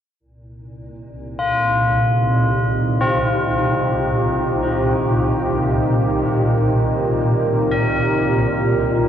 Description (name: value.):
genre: dark ambient drone.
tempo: free time.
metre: none.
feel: none.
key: unclear.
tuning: A4 = 441 Hz.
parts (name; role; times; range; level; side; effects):
deep dark ambient pad; sustained chords; 1.2-9.1 s; C3 to Bb4; -20 LUFS; right 1 dB; chorus, built-in reverb.
swarming drone; drone; 1.2-9.1 s; C2 to Bb2; -21 LUFS; equal; built-in reverb.
tubular bells; arpeggios; 1.4-9.1 s; C4 to Bb4; -22 LUFS; left 2 dB; diffuse ambient delay.
room: wet cathedral reverb, RT60 5.6 s.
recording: worn, warbling old tape, cassette tape, warbly pitch drift.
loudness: -16 LUFS.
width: side -9 dB against mid.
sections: 0.2-9.1 A section.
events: none.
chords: 0.2 Cm7.